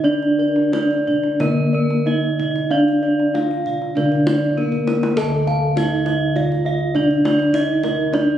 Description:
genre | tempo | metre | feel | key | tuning
Javanese gamelan | 86-102 BPM | 4/4 | straight | D pelog | A4 = 440 Hz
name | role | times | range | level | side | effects
gamelan-type bronze metallophone | melody | 0.0-8.4 s | Bb3 to A4 | -20 LUFS | right 1 dB | none
gamelan-type bossed gongs | arpeggios | 0.0-8.4 s | Bb4 to F5 | -27 LUFS | left 3 dB | none
gamelan-type bronze metallophone | arpeggios | 0.0-8.4 s | Bb4 to A5 | -24 LUFS | right 2 dB | none
gamelan-type bossed gongs | bass | 0.0-8.4 s | D2 to A4 | -21 LUFS | equal | none
kendang | percussion | 0.2-8.3 s | none | -27 LUFS | left 1 dB | none
room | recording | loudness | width
moderate recital hall reverb, RT60 1.6 s | recorded on a phone in the room, studio reverb, compression | -16 LUFS | side -10 dB against mid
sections
0.0-5.2 A section; 5.2-8.4 B section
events
drum fill 4.4-5.2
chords
none

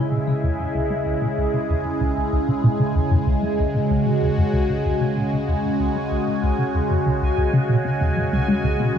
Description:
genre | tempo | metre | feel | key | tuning
ambient, sequencer-driven space music | 95 BPM | 4/4 | straight | unclear | A4 = 440 Hz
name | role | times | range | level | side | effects
phased analog pad | sustained chords | 0.0-9.0 s | C#3 to G#4 | -22 LUFS | equal | phaser, chorus
resonant blip pluck | riff | 0.0-9.0 s | C#2 to G#3 | -22 LUFS | equal | phaser, wide subtle chorus, analog delay
analog drone | bass | 0.0-9.0 s | none | barely audible | none | none
bubbling stepped-filter texture | texture | 0.0-9.0 s | G#5 | -32 LUFS | right 6 dB | chorus, built-in reverb
room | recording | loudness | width
wet plate reverb, RT60 2.5 s | dreamy mix soaked in reverb | -19 LUFS | side -8 dB against mid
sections
0.0-9.0 A section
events
filter sweep on synth arpeggio sound 0.0-9.0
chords
0.0 C#m

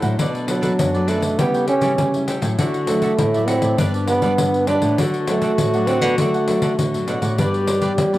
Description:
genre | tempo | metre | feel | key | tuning
samba and choro | 100 BPM | 4/4 | straight | unclear | A4 = 439 Hz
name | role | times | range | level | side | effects
mellow clarinet | second line | 0.0-8.2 s | D4 to G4 | -25 LUFS | left 3 dB | cassette tape, tape echo
cavaquinho | accompaniment | 0.0-8.2 s | D4 to G5 | -29 LUFS | right 2 dB | cassette tape
nylon-string guitar | accompaniment | 0.0-8.2 s | F#2 to E4 | -27 LUFS | left 2 dB | cassette tape
nylon-string guitar | bass | 0.0-8.2 s | G2 to G3 | -25 LUFS | equal | none
pandeiro | percussion | 0.0-8.2 s | none | -24 LUFS | left 2 dB | none
breathy trombone | melody | 0.5-8.2 s | F#3 to D4 | -21 LUFS | right 2 dB | cassette tape
room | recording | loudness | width
light reverb, small room ambience | home recording on cassette | -16 LUFS | side -15 dB against mid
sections
0.0-8.2 A section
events
none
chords
0.2 Bm7; 1.4 A7/C#; 2.6 Dadd9; 3.8 G; 5.0 D; 7.4 G

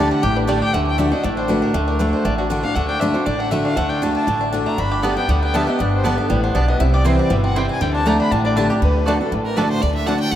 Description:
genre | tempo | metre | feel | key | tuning
bluegrass | 238 BPM | 4/4 | straight | D mixolydian | A4 = 439 Hz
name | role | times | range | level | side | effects
dark fiddle | second line | 0.0-9.4 s | F#4 to B5 | -25 LUFS | left 2 dB | none
picked steel-string acoustic guitar | accompaniment | 0.0-10.4 s | G2 to G4 | -20 LUFS | left 1 dB | none
bluegrass banjo | arpeggios | 0.0-10.1 s | D3 to G4 | -24 LUFS | equal | none
mandolin | stabs | 0.0-0.6, 5.0-10.2 s | A3 to A5 | -27 LUFS | right 3 dB | none
upright bass | bass | 0.0-10.4 s | G1 to D2 | -22 LUFS | equal | none
bright fiddle | melody | 9.4-10.4 s | Bb4 to G5 | -25 LUFS | right 1 dB | none
room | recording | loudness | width
wet cathedral reverb, RT60 5.6 s | in a vast, echoing space | -16 LUFS | side -11 dB against mid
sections
0.7-8.8 A section; 8.8-10.4 B section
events
fiddle solo 0.0-8.8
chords
0.0 Dsus4; 0.7 D; 4.8 Gadd9; 6.8 C; 7.8 Dsus4; 8.8 D

